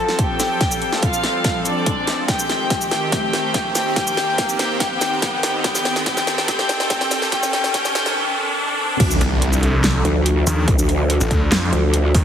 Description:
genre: heavy wobble dubstep.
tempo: 143 BPM.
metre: 4/4.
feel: half-time.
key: D phrygian.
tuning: A4 = 440 Hz.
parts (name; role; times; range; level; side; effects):
dark studio violin section; melody; 0.0-8.1 s; D4 to A5; -22 LUFS; left 2 dB; low-pass filter, ping-pong delay.
supersaw pad; sustained chords; 0.0-12.2 s; Eb3 to A4; -25 LUFS; equal; sidechain pumping, low-pass filter.
riser and impact; sound effects; 0.0-10.7 s; none; -26 LUFS; equal; none.
dubstep drum kit; drums; 0.1-12.2 s; crash cymbal, handclaps, hi-hat, shaker, snare drum; -22 LUFS; equal; high-pass filter on snare, high-pass filter on hats, high-pass filter on perc, high-pass filter on cymbals.
electronic kick drum; drums; 0.2-12.2 s; none; -22 LUFS; equal; none.
growl bass; bass; 9.0-12.1 s; C2 to D2; -18 LUFS; equal; chorus, overdrive.
snarling distorted saw bass; bass; 9.2-12.2 s; A1 to F2; -18 LUFS; equal; distortion, overdrive.
room: moderate lush hall reverb, RT60 2.0 s.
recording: heavily compressed radio sound, high-pass filter.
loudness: -16 LUFS.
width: side -9 dB against mid.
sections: 0.0-9.0 A section; 9.0-12.2 B section.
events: build-up 0.0-9.0; drum fill 0.0-8.2; riser 0.0-9.0; drop 9.0-12.2; impact 9.0-10.7.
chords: 0.0 Dm; 2.3 Cm; 9.0 Dm.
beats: 0.19 | 0.61 1.03 1.45 1.87 | 2.29 2.71 3.12 3.54 | 3.96 4.38 4.80 5.22 | 5.64 6.06 6.48 6.90 | 7.32 7.74 8.16 8.58 | 9.00 9.42 9.84 10.26 | 10.68 11.10 11.52 11.94.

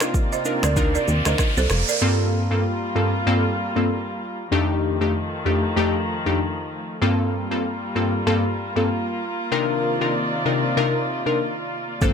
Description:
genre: afrobeats.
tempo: 96 BPM.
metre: 4/4.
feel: swing 58% on 16ths.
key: G minor.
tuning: A4 = 440 Hz.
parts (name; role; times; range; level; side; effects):
glassy digital keys; accompaniment; 0.0-12.1 s; F2 to Bb4; -21 LUFS; left 2 dB; chorus.
dark studio string section; sustained chords; 0.0-12.1 s; C3 to D5; -26 LUFS; equal; none.
afro-pop drum kit; drums; 0.0-2.0, 12.0-12.1 s; finger snaps, kick drum, rim click, shaker; -22 LUFS; equal; overdrive.
riser; sound effects; 0.6-2.0 s; none; -28 LUFS; right 1 dB; none.
balafon; riff; 0.3-2.0, 12.0-12.1 s; A4 to Eb5; -27 LUFS; right 8 dB; ping-pong delay.
plucky analog bass; bass; 0.6-1.8, 12.0-12.1 s; F1 to Eb2; -21 LUFS; equal; none.
room: light reverb.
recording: none.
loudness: -20 LUFS.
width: side -7 dB against mid.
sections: 0.0-2.0 A section; 2.0-12.1 B section.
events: riser 0.6-2.0.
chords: 0.0 Cm11; 2.0 Gm11; 4.5 F13; 7.0 Gm11; 9.5 Cm11.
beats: 0.14 0.77 1.39 | 2.02 2.64 3.27 3.89 | 4.52 5.14 5.77 6.39 | 7.02 7.64 8.27 8.89 | 9.52 10.14 10.77 11.39 | 12.02.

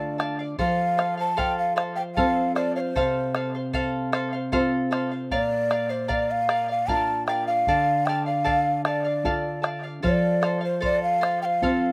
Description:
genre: andean folk, Andean ensemble.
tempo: 76 BPM.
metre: 3/4.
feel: straight.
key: unclear.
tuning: A4 = 440 Hz.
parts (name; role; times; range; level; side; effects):
breathy mellow large quena; melody; 0.0-11.9 s; C5 to A5; -26 LUFS; equal; slapback echo.
charango; accompaniment; 0.0-11.9 s; A4 to F5; -31 LUFS; equal; slapback echo.
nylon-string guitar; accompaniment; 0.0-11.9 s; Bb2 to Bb4; -31 LUFS; equal; none.
bombo; percussion; 0.2-11.8 s; none; -32 LUFS; equal; none.
room: light reverb.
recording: recorded outdoors, with no room sound.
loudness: -24 LUFS.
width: mono.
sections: 0.0-11.9 A section.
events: none.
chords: 0.0 Dm; 0.6 F; 5.3 Bb; 7.7 Dm; 10.0 F.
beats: | 0.59 1.38 2.17 | 2.96 3.75 4.53 | 5.32 6.11 6.89 | 7.68 8.47 9.25 | 10.04 10.83 11.62.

